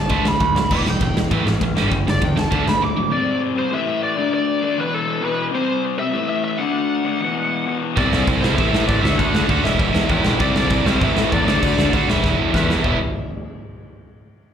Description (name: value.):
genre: punk rock.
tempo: 198 BPM.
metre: 4/4.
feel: straight.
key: E minor.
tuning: A4 = 436 Hz.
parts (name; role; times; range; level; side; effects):
biting lead guitar; melody; 0.0-13.0 s; A4 to D6; -24 LUFS; equal; overdrive, slapback echo, digital delay.
biting overdriven guitar; riff; 0.0-3.1, 8.0-13.0 s; G2 to F#4; -22 LUFS; right 10 dB; slapback echo.
crunchy overdriven guitar; riff; 0.0-13.0 s; E2 to D4; -22 LUFS; left 7 dB; slapback echo.
growling picked electric bass; bass; 0.1-2.8, 8.0-13.0 s; E1 to A2; -22 LUFS; equal; overdrive.
big rock drum kit; drums; 0.1-2.7, 8.0-12.9 s; crash cymbal, kick drum, ride cymbal, snare drum, toms; -22 LUFS; equal; none.
room: light reverb.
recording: live gig heard through the venue's PA, club reverb.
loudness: -16 LUFS.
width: side -8 dB against mid.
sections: 0.0-3.1 A section; 3.1-12.8 B section; 12.8-14.1 C section.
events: lead electric guitar solo 0.0-3.1; drum fill 12.2-12.8.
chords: 0.1 D; 0.7 Em; 1.3 A5; 1.8 G5; 2.5 D; 3.1 C5; 3.7 A5; 4.2 D5; 4.8 E5; 5.5 C5; 6.1 A5; 6.6 D; 7.2 E5; 8.0 C; 8.6 Am; 9.0 D; 9.6 Em; 10.4 C; 11.0 Am; 11.5 D; 12.1 Em; 12.8 E5.